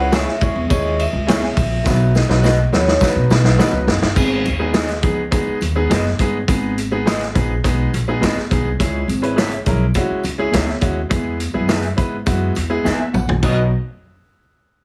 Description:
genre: uptempo 1960s-style soul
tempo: 104 BPM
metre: 4/4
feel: straight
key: unclear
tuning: A4 = 440 Hz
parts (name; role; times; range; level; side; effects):
- vibraphone with medium hard mallets; melody; 0.0-3.8 s; B4 to F#5; -25 LUFS; equal; none
- clear grand piano; accompaniment; 0.0-13.7 s; F#3 to G#5; -25 LUFS; equal; none
- upright bass; bass; 0.0-13.7 s; F#1 to B2; -22 LUFS; equal; none
- electric guitar through a small old amp; stabs; 0.1-13.6 s; E4 to E5; -26 LUFS; equal; none
- vintage drum kit; drums; 0.1-13.6 s; crash cymbal, hi-hat, kick drum, ride cymbal, snare drum, toms; -22 LUFS; equal; none
- congas; percussion; 0.1-13.7 s; none; -31 LUFS; equal; none
- tambourine; percussion; 0.1-13.7 s; none; -42 LUFS; equal; none
room: light reverb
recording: heavily compressed radio sound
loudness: -18 LUFS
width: mono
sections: 0.0-4.2 A section; 4.2-13.4 B section; 13.4-14.8 C section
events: drum fill 1.9-4.2, 12.9-13.4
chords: 0.0 C#m; 1.9 B; 4.2 G#m; 8.8 C#m; 11.1 E; 13.4 B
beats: 0.13 0.70 1.28 | 1.86 2.43 3.01 3.59 | 4.17 4.75 5.32 5.90 | 6.48 7.06 7.64 8.22 | 8.80 9.38 9.95 10.53 | 11.11 11.69 12.27 12.85 | 13.43

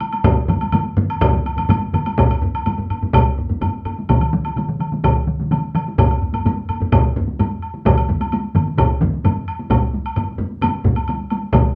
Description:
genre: japanese traditional, taiko drum ensemble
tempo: 128 BPM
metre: 4/4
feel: straight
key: none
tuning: none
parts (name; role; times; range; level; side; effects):
- taiko ensemble; percussion; 0.0-11.7 s; none; -27 LUFS; equal; none
- woodblock; percussion; 0.0-11.6 s; none; -27 LUFS; equal; none
- solo taiko drums; percussion; 0.2-11.6 s; none; -20 LUFS; equal; none
- taiko ensemble; percussion; 0.2-11.0 s; none; -24 LUFS; equal; none
- taiko ensemble; percussion; 0.2-11.6 s; none; -24 LUFS; equal; none
room: wet small room reverb, RT60 0.5 s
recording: band playing live in one room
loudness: -19 LUFS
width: mono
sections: 0.0-2.2 A section; 2.2-9.7 B section; 9.7-11.8 C section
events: speeding up 0.0-11.8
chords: none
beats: | 0.25 0.74 1.22 1.70 | 2.18 2.66 3.14 3.62 | 4.09 4.57 5.04 5.51 | 5.98 6.45 6.92 7.39 | 7.85 8.32 8.78 9.24 | 9.70 10.16 10.62 11.08 | 11.53

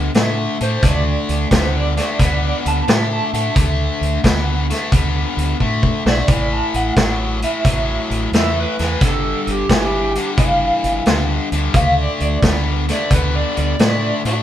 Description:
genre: electric blues shuffle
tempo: 88 BPM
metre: 4/4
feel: swing 68% on 8ths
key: D major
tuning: A4 = 440 Hz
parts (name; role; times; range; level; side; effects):
- overdriven electric guitar; riff; 0.0-14.4 s; G2 to B3; -21 LUFS; left 3 dB; none
- deep dub fingered electric bass; bass; 0.0-14.4 s; G1 to A2; -21 LUFS; right 1 dB; none
- vintage drum kit; drums; 0.1-14.4 s; hi-hat, kick drum, snare drum; -17 LUFS; equal; none
- electric guitar through a small old amp; melody; 0.6-14.4 s; F#4 to A5; -22 LUFS; right 1 dB; tremolo
- overdriven slide guitar; second line; 8.4-14.2 s; G4 to E5; -22 LUFS; right 2 dB; none
room: light reverb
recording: band playing live in one room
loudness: -15 LUFS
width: side -11 dB against mid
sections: 0.0-14.4 A section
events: drum fill 5.6-6.3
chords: 0.0 D5; 6.3 A5; 9.0 G5; 11.7 D5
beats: 0.15 | 0.83 1.51 2.20 2.88 | 3.56 4.24 4.92 5.61 | 6.29 6.97 7.65 8.33 | 9.02 9.70 10.38 11.06 | 11.74 12.43 13.11 13.79

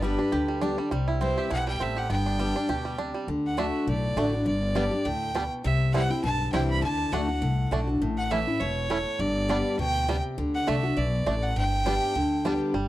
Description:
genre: bluegrass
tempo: 203 BPM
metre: 4/4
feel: swing 55% on 8ths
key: G major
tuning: A4 = 439 Hz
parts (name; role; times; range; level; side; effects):
- clear fiddle; melody; 0.0-12.6 s; B4 to B5; -30 LUFS; right 1 dB; none
- picked steel-string acoustic guitar; accompaniment; 0.0-12.7 s; G2 to G4; -29 LUFS; left 1 dB; none
- bluegrass banjo; arpeggios; 0.0-12.9 s; G3 to G4; -32 LUFS; right 4 dB; none
- upright bass; bass; 0.0-12.9 s; E1 to D2; -29 LUFS; equal; none
room: small room ambience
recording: dry, close 1970s-style studio recording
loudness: -24 LUFS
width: side -15 dB against mid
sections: 0.0-3.3 A section; 3.3-12.7 B section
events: none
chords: 0.0 G; 0.9 C; 2.1 G; 3.3 D; 4.5 G; 5.6 C; 6.8 D; 8.0 A; 9.2 G; 10.4 D; 11.6 G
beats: 0.03 0.32 0.62 | 0.92 1.21 1.51 1.80 | 2.10 2.39 2.69 2.99 | 3.28 3.58 3.87 4.17 | 4.46 4.76 5.06 5.35 | 5.65 5.94 6.24 6.53 | 6.83 7.12 7.42 7.72 | 8.01 8.31 8.60 8.90 | 9.19 9.49 9.79 10.08 | 10.38 10.67 10.97 11.26 | 11.56 11.86 12.15 12.45 | 12.74

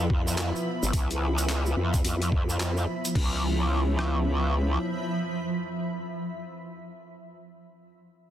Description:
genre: glitch hop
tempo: 108 BPM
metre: 4/4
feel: swing 62% on 16ths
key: unclear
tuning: A4 = 440 Hz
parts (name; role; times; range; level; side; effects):
- dark analog pad; sustained chords; 0.0-6.1 s; B3 to E5; -35 LUFS; left 2 dB; chorus, sidechain pumping
- growl bass; bass; 0.0-4.8 s; G#1 to E#2; -26 LUFS; equal; chorus, tube saturation
- granular cloud pad; texture; 0.0-6.1 s; E#3 to B5; -33 LUFS; right 1 dB; built-in reverb, sidechain pumping
- boom bap sampler-style drum kit; drums; 0.1-4.1 s; kick drum, rim click; -26 LUFS; equal; soft clipping on snare
- egg shaker; percussion; 0.3-3.1 s; none; -36 LUFS; right 4 dB; none
- boom bap sampler-style drum kit; drums; 0.4-3.3 s; crash cymbal, handclaps, hi-hat; -35 LUFS; left 2 dB; none
room: light reverb, digital ambience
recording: dense, heavily limited modern master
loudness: -25 LUFS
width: side -11 dB against mid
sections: 0.0-3.2 A section; 3.2-5.4 B section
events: none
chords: 0.0 C#7#9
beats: 0.38 | 0.93 1.49 2.04 2.60 | 3.15 3.71 4.27 4.82

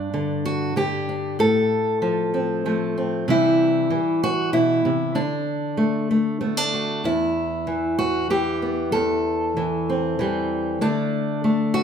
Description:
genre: folk, solo fingerstyle acoustic guitar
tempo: 96 BPM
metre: 3/4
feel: straight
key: unclear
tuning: A4 = 440 Hz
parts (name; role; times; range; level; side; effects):
- fingerpicked steel-string acoustic guitar; solo; 0.0-11.8 s; E2 to A4; -20 LUFS; equal; none
room: wet large studio reverb, RT60 1.1 s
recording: band playing live in one room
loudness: -20 LUFS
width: side -7 dB against mid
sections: 0.0-11.8 A section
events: none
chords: 0.0 G5; 1.4 F/A; 3.3 C; 5.2 D; 7.1 Em; 8.9 C/E; 10.8 D5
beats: 0.14 0.77 | 1.40 2.03 2.66 | 3.28 3.91 4.54 | 5.16 5.79 6.42 | 7.05 7.69 8.32 | 8.95 9.57 10.20 | 10.82 11.45

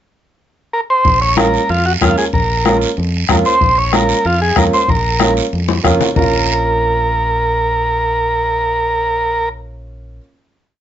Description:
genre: latin, cumbia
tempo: 188 BPM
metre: 4/4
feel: straight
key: Bb minor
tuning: A4 = 437 Hz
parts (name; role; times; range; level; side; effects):
- combo organ; melody; 0.7-9.5 s; F4 to Db5; -15 LUFS; right 1 dB; none
- guiro; percussion; 1.0-6.2 s; none; -24 LUFS; right 7 dB; none
- fingered electric bass; bass; 1.1-10.2 s; Bb1 to F2; -20 LUFS; equal; none
- bombo; percussion; 1.1-6.2 s; none; -18 LUFS; left 4 dB; none
- congas; percussion; 1.1-6.2 s; none; -21 LUFS; left 5 dB; none
- warm upright piano; accompaniment; 1.4-10.2 s; Bb3 to F4; -19 LUFS; right 3 dB; none
room: moderate studio ambience, RT60 0.5 s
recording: nothing above 7.9 kHz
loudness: -12 LUFS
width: side -10 dB against mid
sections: 0.0-1.1 pickup bar; 1.1-6.2 A section; 6.2-8.7 final chord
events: drum fill 5.7-6.2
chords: 0.0 N.C.; 1.1 Bbm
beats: 0.09 0.41 0.73 | 1.05 1.37 1.69 2.01 | 2.33 2.65 2.97 3.29 | 3.61 3.93 4.25 4.57 | 4.89 5.21 5.53 5.85 | 6.17 6.49 6.81 7.13 | 7.45 7.77 8.09 8.41

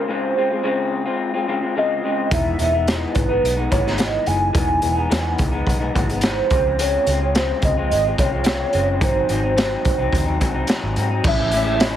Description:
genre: indie pop, bedroom pop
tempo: 108 BPM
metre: 4/4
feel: straight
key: unclear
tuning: A4 = 440 Hz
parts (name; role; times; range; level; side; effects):
- warbly nostalgic lead; melody; 0.0-12.0 s; Bb4 to G#5; -21 LUFS; right 2 dB; analog chorus, slapback echo
- electric guitar through a small old amp; accompaniment; 0.0-12.0 s; Ab2 to F4; -23 LUFS; left 4 dB; lush chorus, vibrato effect
- vintage muted fingered electric bass; bass; 2.3-12.0 s; E1 to Ab2; -24 LUFS; right 1 dB; none
- raw garage drum kit; drums; 2.3-11.9 s; crash cymbal, hi-hat, kick drum, snare drum; -21 LUFS; equal; none
room: light reverb, studio reverb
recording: heavily compressed radio sound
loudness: -17 LUFS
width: side -11 dB against mid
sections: 0.0-11.2 A section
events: none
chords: 0.0 Dbmaj7; 2.3 Emaj7; 6.5 Dbmaj7; 9.0 Ab7; 11.2 Amaj7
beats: | 0.09 0.65 1.21 1.76 | 2.32 2.88 3.44 3.99 | 4.55 5.11 5.67 6.22 | 6.78 7.34 7.90 8.46 | 9.01 9.57 10.13 10.69 | 11.25 11.80

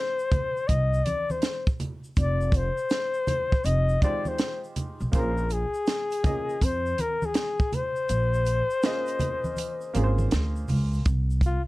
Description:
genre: hip hop, jazz-hop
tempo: 81 BPM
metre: 4/4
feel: swing 65% on 16ths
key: unclear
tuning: A4 = 439 Hz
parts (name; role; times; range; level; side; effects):
- breathy flugelhorn; melody; 0.0-11.6 s; F4 to Eb5; -27 LUFS; left 3 dB; none
- tube shaker and congas; percussion; 0.2-11.7 s; none; -34 LUFS; right 1 dB; none
- compact cocktail drum kit; drums; 0.3-11.7 s; hi-hat, kick drum, snare drum; -26 LUFS; equal; none
- upright bass; bass; 0.7-11.6 s; F1 to F2; -25 LUFS; equal; none
- warm upright piano; accompaniment; 4.0-11.1 s; Ab3 to Eb5; -34 LUFS; right 4 dB; none
room: light reverb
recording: dark, warm production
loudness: -23 LUFS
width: side -19 dB against mid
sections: 0.0-11.1 A section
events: kick muted 8.1-11.1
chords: 0.0 Fm9; 5.1 Bbm9; 11.1 N.C.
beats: 0.69 1.43 | 2.17 2.91 3.65 4.39 | 5.13 5.87 6.61 7.36 | 8.10 8.84 9.58 10.32 | 11.06

